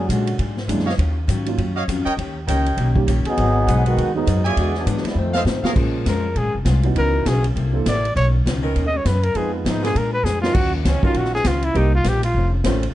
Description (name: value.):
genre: jazz, big band swing.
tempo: 201 BPM.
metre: 4/4.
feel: swing 60% on 8ths.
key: Eb minor, Bb minor from 5.8 s.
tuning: A4 = 440 Hz.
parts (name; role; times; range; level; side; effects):
clear trombone section; second line; 0.0-0.4, 3.3-5.7 s; D3 to Ab4; -22 LUFS; right 1 dB; none.
upright bass; bass; 0.0-12.9 s; F1 to Bb2; -20 LUFS; equal; none.
picked steel-string acoustic guitar; accompaniment; 0.1-12.8 s; F2 to A4; -28 LUFS; left 4 dB; none.
swinging big-band drum kit; drums; 0.1-12.9 s; crash cymbal, hi-hat, kick drum, ride cymbal, snare drum; -25 LUFS; equal; none.
warm grand piano; accompaniment; 0.7-12.8 s; D3 to C5; -26 LUFS; right 6 dB; none.
warm trumpet section; stabs; 0.9-5.7 s; Gb4 to Ab5; -25 LUFS; right 2 dB; none.
warm saxophone section; sustained chords; 5.8-12.9 s; D3 to A#4; -28 LUFS; right 1 dB; none.
warm trumpet; melody; 6.1-12.5 s; Bb3 to D#5; -23 LUFS; left 1 dB; none.
room: little or no reverb.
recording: dark, warm production, nothing above 10.8 kHz.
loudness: -17 LUFS.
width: side -14 dB against mid.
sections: 0.0-5.8 A section; 5.8-12.9 B section.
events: trombone section solo 0.0-5.8; drum fill 5.2-5.8, 10.2; trumpet solo 5.8-12.9.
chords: 0.0 Bb7alt; 1.0 Ebm9; 2.2 Eb7; 3.4 Abm7; 4.6 E9; 5.2 F7; 5.8 Bbm7; 7.0 Dbm11; 7.6 C13; 8.2 Bmaj9; 9.4 Fm7b5; 9.9 Bb7b9; 10.5 Ebm9; 11.7 Cm7; 12.3 F7b13.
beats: 0.09 0.39 0.69 | 0.98 1.28 1.58 1.88 | 2.18 2.48 2.78 3.08 | 3.38 3.67 3.97 4.27 | 4.57 4.87 5.17 5.47 | 5.77 6.07 6.36 6.66 | 6.96 7.26 7.56 7.86 | 8.16 8.46 8.76 9.05 | 9.35 9.65 9.95 10.25 | 10.55 10.85 11.15 11.45 | 11.74 12.04 12.34 12.64.